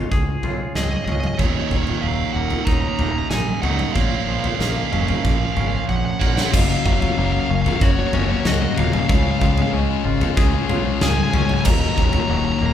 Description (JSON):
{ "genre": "post-rock", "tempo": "94 BPM", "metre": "4/4", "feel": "straight", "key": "Eb minor", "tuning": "A4 = 440 Hz", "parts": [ { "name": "deep dark ambient pad", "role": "sustained chords", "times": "0.1-12.7 s", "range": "Db3 to Db6", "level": "-34 LUFS", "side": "right 3 dB", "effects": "none" }, { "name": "twangy electric guitar", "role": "arpeggios", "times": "0.0-12.7 s", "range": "Eb2 to Ab4", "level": "-29 LUFS", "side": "left 1 dB", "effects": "none" }, { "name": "vibraphone with medium hard mallets", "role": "arpeggios", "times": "0.0-12.7 s", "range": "Bb4 to F5", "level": "-34 LUFS", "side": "right 4 dB", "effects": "none" }, { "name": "growling picked electric bass", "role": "bass", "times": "0.1-12.7 s", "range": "Eb1 to Db2", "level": "-24 LUFS", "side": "right 1 dB", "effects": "overdrive" }, { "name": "big rock drum kit", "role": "drums", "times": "0.1-12.3 s", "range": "crash cymbal, kick drum, snare drum, toms", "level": "-21 LUFS", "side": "equal", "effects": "none" }, { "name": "fuzz lead guitar", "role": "melody", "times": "0.8-12.7 s", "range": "Db5 to Bb5", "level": "-26 LUFS", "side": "right 2 dB", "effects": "distortion" }, { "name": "distorted electric guitar", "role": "riff", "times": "1.4-6.5 s", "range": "Eb2 to Bb3", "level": "-25 LUFS", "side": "right 8 dB", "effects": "overdrive" }, { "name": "thick fuzz guitar", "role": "riff", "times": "6.5-12.7 s", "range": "Eb2 to Ab4", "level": "-22 LUFS", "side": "left 8 dB", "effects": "distortion" } ], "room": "moderate large studio reverb, RT60 1.2 s", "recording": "band playing live in one room", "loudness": "-17 LUFS", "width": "side -10 dB against mid", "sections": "0.0-6.5 A section; 6.5-12.7 B section", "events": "drum fill 5.9-6.5", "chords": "0.0 Db; 1.4 Ebm7; 4.0 Bbm; 6.5 Gbmaj7; 9.1 Db; 11.7 Ebm7" }